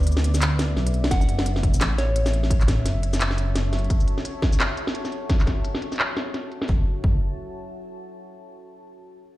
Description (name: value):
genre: half-time drum and bass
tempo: 172 BPM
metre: 4/4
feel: swing 58% on 16ths, half-time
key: F# minor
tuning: A4 = 440 Hz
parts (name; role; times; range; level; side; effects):
- deep dark ambient pad; sustained chords; 0.0-8.0 s; B3 to A5; -34 LUFS; left 1 dB; chorus, built-in reverb, sidechain pumping
- dark detuned saw bass; bass; 0.0-3.9, 6.7-7.2 s; F#1 to D2; -22 LUFS; equal; tube saturation
- industrial drum kit; drums; 0.0-6.7 s; handclaps, hi-hat, shaker, snare drum; -26 LUFS; equal; low-pass filter on snare, low-pass filter on hats, low-pass filter on perc, low-pass filter on room
- soft synth bell; melody; 1.1-2.3 s; C#5 to F#5; -32 LUFS; left 1 dB; chorus, tape echo
- electronic kick drum; drums; 1.1-7.1 s; none; -22 LUFS; equal; none
room: light reverb, digital ambience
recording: played on a big sound system in a bare room, large studio reverb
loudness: -20 LUFS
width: side -17 dB against mid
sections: 0.0-1.1 A section; 1.1-6.7 B section; 6.7-8.1 C section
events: drop 0.0-1.1; band accent 1.0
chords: 0.0 Bm; 1.1 F#m7